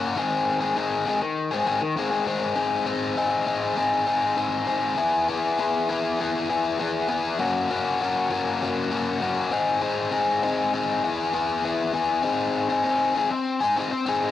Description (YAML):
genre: rock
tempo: 99 BPM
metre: 4/4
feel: straight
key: Ab mixolydian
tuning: A4 = 440 Hz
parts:
  - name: biting overdriven guitar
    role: solo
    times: 0.0-14.3 s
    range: Eb3 to Ab4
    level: -22 LUFS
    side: left 3 dB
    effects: none
room: moderate spring reverb, RT60 1.8 s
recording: home recording on cassette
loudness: -22 LUFS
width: side -12 dB against mid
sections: 0.0-2.6 A section; 2.6-12.2 B section; 12.2-14.3 A section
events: none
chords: 0.2 Ab; 5.0 E; 7.4 Gb; 9.5 Ab; 11.0 E; 12.2 Ab